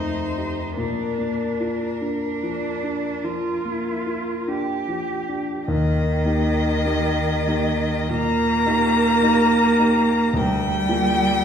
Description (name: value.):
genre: classical, slow romantic movement for piano trio.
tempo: 47-54 BPM.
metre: 4/4.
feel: rubato.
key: Bb major, Eb major from 5.7 s.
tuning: A4 = 438 Hz.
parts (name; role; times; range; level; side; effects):
rich violin; melody; 0.0-11.4 s; Bb4 to Bb5; -25 LUFS; left 4 dB; none.
clear cello; second line; 0.0-11.4 s; Eb3 to G4; -23 LUFS; right 3 dB; none.
dark concert grand piano; accompaniment; 0.0-11.4 s; D2 to Ab4; -23 LUFS; left 1 dB; none.
room: wet scoring stage reverb, RT60 1.7 s.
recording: heard from further back in the room.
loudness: -19 LUFS.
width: side -8 dB against mid.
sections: 0.0-5.7 A section; 5.7-11.4 B section.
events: none.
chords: 0.0 F9; 0.8 Bb; 5.7 Eb; 10.4 Bb7/D.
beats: | 0.79 2.03 3.25 4.48 | 5.69 6.87 8.10 9.24 | 10.36.